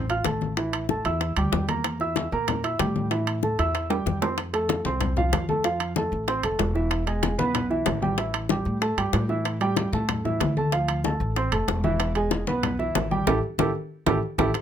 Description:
latin, salsa; 189 BPM; 4/4; straight; A4 = 439 Hz
warm grand piano; accompaniment; 0.0-14.5 s; E3 to F6; -26 LUFS; right 2 dB
upright bass; bass; 0.0-14.5 s; E1 to Bb2; -28 LUFS; equal
bongos; percussion; 0.1-14.6 s; -30 LUFS; left 12 dB
congas; percussion; 0.1-14.6 s; -31 LUFS; left 6 dB
timbales; percussion; 0.1-14.6 s; -30 LUFS; right 7 dB
light reverb; close, detailed microphones; -22 LUFS; side -9 dB against mid
0.0-4.4 A section; 4.4-14.5 B section
drum fill 3.9-4.4, 13.6-14.5; band accent 13.3-14.5
0.0 Dm (rootless); 0.6 A5; 1.8 Edim; 3.1 A5; 4.4 F; 5.6 Fmaj7; 6.9 E; 8.2 A5; 10.7 Dm7; 12.0 E; 13.3 A5

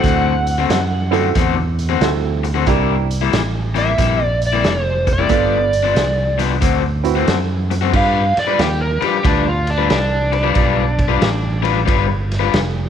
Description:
electric blues shuffle; 91 BPM; 4/4; swing 65% on 8ths; A4 = 440 Hz
overdriven slide guitar; melody; 0.0-11.8 s; D4 to F#5; -19 LUFS; right 1 dB
bright upright piano; accompaniment; 0.0-7.3 s; B3 to B4; -22 LUFS; right 12 dB
overdriven electric guitar; riff; 0.0-12.6 s; G2 to B4; -20 LUFS; left 12 dB
fingered electric bass; bass; 0.0-12.9 s; F1 to G2; -19 LUFS; right 1 dB
raw garage drum kit; drums; 0.0-12.7 s; crash cymbal, hi-hat, kick drum, ride cymbal, snare drum; -21 LUFS; right 1 dB
light reverb, small room ambience; 1960s-style stereo with parts hard left and right; -14 LUFS; side -8 dB against mid
0.0-7.9 A section; 7.9-12.9 B section
electric slide guitar solo 7.9-12.9
0.0 D7; 2.7 C7; 5.3 G7; 6.6 D7; 7.9 G7

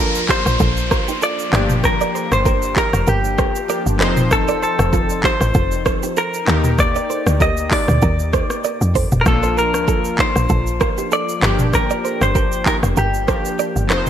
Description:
afrobeats; 97 BPM; 4/4; swing 55% on 16ths; A4 = 440 Hz
direct-recorded clean electric guitar; melody; 0.0-13.9 s; G4 to Eb5; -21 LUFS; left 1 dB; lush chorus, digital delay
warm analog keys; accompaniment; 0.0-14.1 s; F3 to C5; -24 LUFS; left 3 dB; chorus
direct-recorded clean electric guitar; riff; 0.0-14.0 s; Eb4 to D5; -25 LUFS; right 9 dB; analog chorus, digital delay
woody log drum bass; bass; 0.0-14.1 s; F1 to F2; -19 LUFS; equal
downlifter; sound effects; 0.0-4.3 s; -27 LUFS; equal
afro-pop drum kit; drums; 0.1-14.1 s; handclaps, hi-hat, kick drum, rim click, shaker, toms; -20 LUFS; equal; gated reverb
light reverb, digital ambience; bright 1980s-style digital production; -15 LUFS; side -10 dB against mid
0.0-14.1 A section
0.0 Bbmaj7; 1.5 F7; 9.3 Bbmaj7; 11.4 F

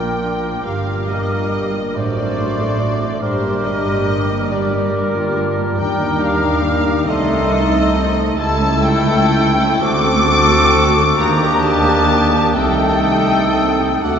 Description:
classical, slow romantic movement for symphony orchestra; 40-48 BPM (dotted quarters); 6/8; rubato; A4 = 441 Hz
warm studio violin section; melody; 0.0-14.2 s; C5 to D6; -22 LUFS; left 3 dB
silver concert flute; second line; 0.0-14.2 s; C6 to E6; -27 LUFS; left 1 dB
warm clarinet; second line; 0.0-14.2 s; C4 to G4; -24 LUFS; left 2 dB
warm oboe; second line; 0.0-14.2 s; G4 to C5; -26 LUFS; right 1 dB
warm studio violin section; second line; 0.0-14.2 s; C5 to D6; -25 LUFS; left 2 dB
warm bassoon; accompaniment; 0.0-14.2 s; G3 to C4; -24 LUFS; right 1 dB
warm studio viola section; accompaniment; 0.0-14.2 s; G3 to Bb4; -26 LUFS; right 1 dB
mellow French horn section; sustained chords; 0.0-14.2 s; F3 to F#4; -23 LUFS; left 2 dB
dark trumpet section; stabs; 0.0-14.2 s; G4 to C5; -24 LUFS; equal
rich studio double bass section; bass; 0.0-14.2 s; G1 to Eb2; -22 LUFS; right 2 dB
warm studio cello section; bass; 0.0-14.2 s; C2 to Bb2; -23 LUFS; right 2 dB
wet cathedral reverb, RT60 5.1 s; nothing above 7.8 kHz; -13 LUFS; side -7 dB against mid
0.0-14.2 A section
0.0 Bb; 0.7 Gm7; 2.0 D7/A; 3.2 Gm; 5.8 Ebmaj7; 7.1 Adim/C; 8.4 A7/C#; 9.8 D7; 11.2 Ebmaj7; 12.6 Am7b5/C

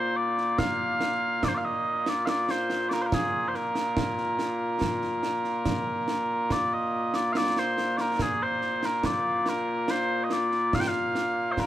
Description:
scottish traditional, Scottish pipe music; 71 BPM; 3/4; straight; Bb major; A4 = 440 Hz
mellow small bagpipes; melody; 0.0-11.7 s; Bb2 to G5; -25 LUFS; equal
concert snare drum and concert bass drum; drums; 0.4-11.7 s; -32 LUFS; right 2 dB
light reverb; -25 LUFS; side -13 dB against mid
0.0-6.5 A section; 6.5-11.7 A section

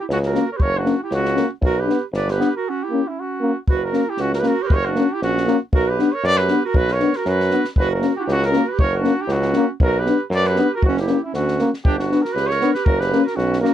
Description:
balkan folk, Balkan brass band; 117 BPM; 2/4; swing 55% on 16ths; F# phrygian dominant; A4 = 440 Hz
mellow trumpet; melody; 0.0-13.7 s; E4 to D5; -23 LUFS; equal
bright clarinet; second line; 0.0-13.7 s; C#4 to B4; -26 LUFS; right 11 dB
clear tuba; bass; 0.1-13.7 s; F#1 to F#2; -22 LUFS; equal
compact cocktail drum kit; percussion; 0.1-13.7 s; kick drum, snare drum; -22 LUFS; equal
clear trombone; accompaniment; 0.3-13.7 s; A#3 to B3; -23 LUFS; right 4 dB
dark euphonium; accompaniment; 0.3-13.7 s; C#4 to D4; -20 LUFS; left 8 dB
little or no reverb; dry, close 1970s-style studio recording; -17 LUFS; side -11 dB against mid
0.0-3.7 A section; 3.7-11.9 A section; 11.9-13.7 B section
break 2.7-3.7
0.0 F#; 1.6 Bm; 2.7 A#dim7; 3.7 F#; 5.7 Bm; 7.8 F#; 9.8 Bm; 10.8 F#; 11.9 G; 12.9 F#

